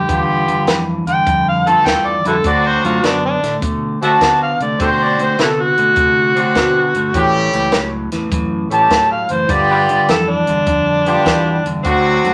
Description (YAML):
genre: electric blues shuffle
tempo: 102 BPM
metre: 4/4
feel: swing 67% on 8ths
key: D mixolydian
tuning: A4 = 440 Hz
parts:
  - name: overdriven harmonica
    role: melody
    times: 0.0-12.0 s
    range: D4 to A5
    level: -17 LUFS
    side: equal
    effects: none
  - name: electric guitar at the edge of break-up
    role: riff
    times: 0.0-12.3 s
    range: G2 to B3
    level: -23 LUFS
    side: equal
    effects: none
  - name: fingered electric bass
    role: bass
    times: 0.0-12.3 s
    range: F#1 to D3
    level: -27 LUFS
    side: equal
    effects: none
  - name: bright horn section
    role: stabs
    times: 0.1-12.3 s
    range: F#3 to C5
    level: -20 LUFS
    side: equal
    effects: none
  - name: compact cocktail drum kit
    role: drums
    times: 0.1-12.3 s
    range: hi-hat, kick drum, snare drum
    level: -22 LUFS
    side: equal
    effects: none
room: moderate studio reverb, RT60 0.6 s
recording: none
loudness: -15 LUFS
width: mono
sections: 0.0-12.3 A section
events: harmonica solo 0.0-12.3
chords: 0.0 G7; 2.4 D7; 7.2 A7; 9.5 G7